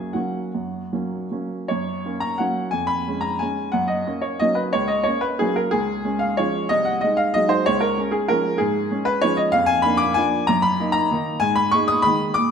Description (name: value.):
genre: classical, piano waltz.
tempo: 142-204 BPM.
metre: 3/4.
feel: rubato.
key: F# major.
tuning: A4 = 440 Hz.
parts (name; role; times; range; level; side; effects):
clear upright piano; solo; 0.0-12.5 s; B#1 to Eb6; -19 LUFS; equal; none.
room: wet recital hall reverb, RT60 1.8 s.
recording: none.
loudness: -19 LUFS.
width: side -7 dB against mid.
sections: 0.0-1.7 A section; 1.7-12.5 B section.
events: none.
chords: 0.0 F#; 2.7 C#7/E#; 3.7 F#; 5.7 C#; 6.7 G#7/B#; 7.7 C#; 9.5 Bb7/F; 10.5 Ebm/Gb; 11.4 Abm.